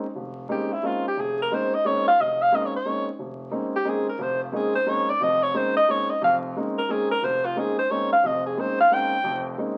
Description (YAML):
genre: jazz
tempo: 178 BPM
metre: 3/4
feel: swing 64% on 8ths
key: Bb dorian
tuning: A4 = 440 Hz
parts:
  - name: warm grand piano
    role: accompaniment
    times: 0.0-9.8 s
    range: F1 to Eb4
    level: -31 LUFS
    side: equal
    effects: none
  - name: breathy alto saxophone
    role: melody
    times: 0.5-9.5 s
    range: E4 to G5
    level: -24 LUFS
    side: equal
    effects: none
room: moderate studio reverb, RT60 0.8 s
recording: very old 78 rpm record, vinyl crackle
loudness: -24 LUFS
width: mono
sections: 0.0-9.8 A section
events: alto saxophone solo 0.0-9.8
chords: 0.0 Bbm11